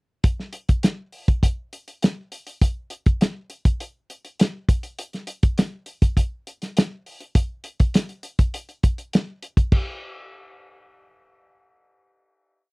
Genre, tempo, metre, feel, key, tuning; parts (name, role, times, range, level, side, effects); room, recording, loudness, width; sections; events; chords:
soul; 101 BPM; 4/4; straight
warm soul drum kit; drums; 0.2-9.9 s; crash cymbal, hi-hat, kick drum, snare drum; -19 LUFS; equal
light reverb; dry, close 1970s-style studio recording; -21 LUFS; side -30 dB against mid
0.2-9.7 A section; 9.7-12.1 final hit